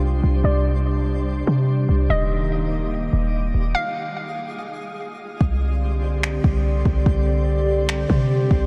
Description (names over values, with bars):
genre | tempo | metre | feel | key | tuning
hip hop, atmospheric cloud-rap | 145 BPM | 4/4 | half-time | C minor | A4 = 440 Hz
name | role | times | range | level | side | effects
warbly tape-like pad | sustained chords | 0.0-8.7 s | C3 to D5 | -28 LUFS | equal | chorus, built-in reverb, sidechain pumping, low-pass filter
concert harp | arpeggios | 0.0-1.1 s | F4 | -45 LUFS | equal | none
warm 808-style bass | bass | 0.0-8.7 s | Eb1 to C3 | -22 LUFS | equal | none
twinkling granular texture | texture | 0.0-8.7 s | G3 to D6 | -36 LUFS | equal | built-in reverb
hollow square pluck | melody | 0.4-4.5 s | D5 to F5 | -32 LUFS | equal | chorus, low-pass filter, delay
smooth R&B drum kit | drums | 5.4-8.6 s | finger snaps, kick drum | -25 LUFS | equal | overdrive
room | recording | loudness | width
moderate huge ambient reverb, RT60 7.3 s | dreamy mix soaked in reverb | -21 LUFS | mono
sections
0.0-5.4 A section; 5.4-8.7 B section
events
filter sweep 0.0-5.4; stop 3.8-5.4; hi-hats muted 5.4-8.7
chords
0.0 Csus2; 2.1 Ebmaj7; 3.8 Fm7; 5.4 Csus2